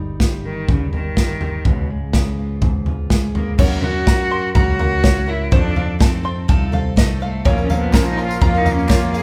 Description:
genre	indie folk with a building arrangement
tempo	124 BPM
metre	4/4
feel	straight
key	unclear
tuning	A4 = 443 Hz
part	fingerpicked steel-string acoustic guitar	accompaniment	0.0-3.6 s	G#2 to A#4	-31 LUFS	equal	none
part	picked electric bass	bass	0.0-9.2 s	G1 to F#2	-26 LUFS	equal	none
part	natural country drum kit	drums	0.2-9.0 s	crash cymbal, kick drum, snare drum, toms	-19 LUFS	equal	none
part	warm cello	melody	0.4-9.2 s	G#2 to G#4	-26 LUFS	equal	none
part	picked twelve-string acoustic guitar	accompaniment	3.6-9.2 s	A#2 to A#4	-29 LUFS	equal	none
part	open-back banjo	arpeggios	3.6-9.2 s	C5 to B#5	-30 LUFS	equal	none
part	clear trombone	second line	7.4-9.2 s	E#3 to A#3	-28 LUFS	equal	none
part	bright upright piano	accompaniment	7.4-9.2 s	A#1 to A#4	-34 LUFS	equal	none
part	warm studio string section	sustained chords	7.4-9.2 s	A#3 to E#4	-36 LUFS	equal	none
part	tambourine	percussion	7.5-9.2 s	none	-42 LUFS	equal	none
part	group handclap	percussion	7.9-9.0 s	none	-35 LUFS	equal	none
room	light reverb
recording	band playing live in one room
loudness	-18 LUFS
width	mono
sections	0.0-3.6 A section; 3.6-9.2 B section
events	none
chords	0.0 D#/G; 1.7 C#7; 3.6 F#; 5.5 F7; 7.5 A#m

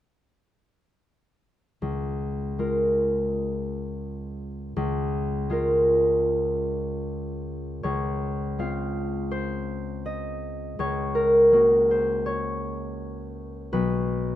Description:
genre	classical, solo harp piece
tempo	80 BPM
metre	4/4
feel	uneven beats, rubato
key	Db major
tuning	A4 = 440 Hz
part	concert harp	solo	1.8-14.4 s	Cb2 to F5	-23 LUFS	equal	none
room	little or no reverb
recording	close, detailed microphones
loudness	-23 LUFS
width	side -12 dB against mid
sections	1.8-7.8 A section; 7.8-14.4 B section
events	none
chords	1.8 Db6; 7.8 Dbmaj7; 10.8 Ab9sus4/Db; 13.7 Cbmaj7(no3)

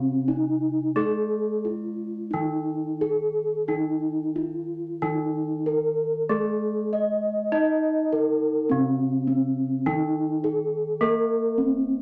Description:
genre	gamelan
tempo	88-104 BPM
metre	4/4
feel	straight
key	Eb pelog barang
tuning	A4 = 442 Hz
part	gamelan-type bronze metallophone	melody	0.0-12.0 s	C4+20c to Eb5	-26 LUFS	equal	none
part	gamelan-type bronze metallophone	accompaniment	0.0-12.0 s	C3+20c to Eb4	-32 LUFS	equal	none
room	wet studio ambience, RT60 0.5 s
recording	none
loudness	-25 LUFS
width	mono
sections	0.0-8.7 A section; 8.7-12.0 B section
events	none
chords	none

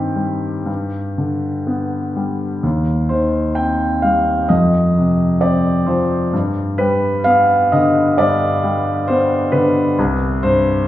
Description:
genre	classical, romantic character piece for solo piano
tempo	60-68 BPM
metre	4/4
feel	rubato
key	C minor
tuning	A4 = 441 Hz
part	bright concert grand piano	solo	0.0-10.9 s	C2 to G5	-14 LUFS	equal	none
room	wet recital hall reverb, RT60 1.5 s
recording	heard from further back in the room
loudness	-14 LUFS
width	side -13 dB against mid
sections	0.0-10.9 A section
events	none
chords	0.0 Cm/G; 0.7 G; 2.6 Cm/Eb; 4.5 F5; 6.3 G; 10.0 C5

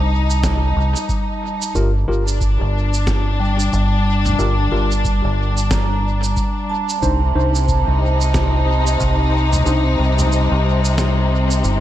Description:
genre	ambient dub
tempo	91 BPM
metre	4/4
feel	swing 59% on 16ths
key	C dorian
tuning	A4 = 440 Hz
part	clear symphonic string section	sustained chords	0.0-11.8 s	C3 to Eb4	-22 LUFS	left 3 dB	none
part	vibraphone with medium mallets	arpeggios	0.0-11.8 s	G3 to D6	-24 LUFS	right 2 dB	dub echo
part	deep dub fingered electric bass	bass	0.0-11.8 s	G1 to C2	-17 LUFS	equal	none
part	lo-fi sampler-style drum kit	drums	0.3-11.8 s	cabasa, snare drum, toms	-26 LUFS	right 1 dB	dub echo
part	electronic kick drum	drums	0.4-9.2 s	none	-23 LUFS	equal	none
part	tine electric piano	stabs	1.8-9.8 s	D4 to C5	-27 LUFS	left 1 dB	medium tremolo, dub echo
room	light reverb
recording	none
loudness	-15 LUFS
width	side -12 dB against mid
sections	0.0-11.8 A section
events	kick drops out 9.7-11.8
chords	0.0 Cmadd9; 1.8 Gm; 7.0 Cm

